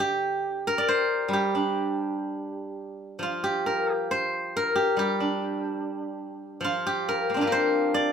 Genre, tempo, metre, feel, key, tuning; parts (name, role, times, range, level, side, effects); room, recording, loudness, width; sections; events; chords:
chinese traditional, Chinese solo plucked strings; 62-74 BPM; 2/4; rubato; G yu mode; A4 = 440 Hz
steel-string zither; solo; 0.0-8.1 s; D3 to D5; -24 LUFS; equal
moderate small room reverb, RT60 0.5 s; band playing live in one room; -24 LUFS; side -7 dB against mid
0.0-3.2 A section; 3.2-8.1 B section